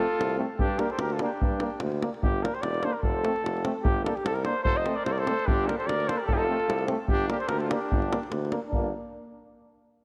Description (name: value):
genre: balkan folk, Balkan brass band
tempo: 148 BPM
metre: 2/4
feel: straight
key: G minor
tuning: A4 = 441 Hz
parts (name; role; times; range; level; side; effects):
- warm flugelhorn; melody; 0.0-8.3 s; G4 to Eb5; -32 LUFS; equal; delay
- warm trumpet; second line; 0.0-1.8, 4.7-8.3 s; D4 to C5; -38 LUFS; equal; none
- bright trombone; accompaniment; 0.0-8.9 s; A3 to Bb3; -39 LUFS; equal; none
- clear euphonium; accompaniment; 0.0-8.9 s; C4 to D4; -39 LUFS; equal; none
- clear tuba; bass; 0.2-8.9 s; E1 to G2; -34 LUFS; equal; none
- davul; percussion; 0.2-8.9 s; none; -32 LUFS; equal; none
room: moderate lush hall reverb, RT60 2.1 s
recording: dreamy mix soaked in reverb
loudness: -27 LUFS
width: mono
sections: 0.0-2.2 A section; 2.2-8.7 A section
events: none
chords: 0.0 F; 0.6 Gm; 3.0 F; 3.8 Gm; 4.7 F; 5.5 Gm; 6.3 F; 7.1 Gm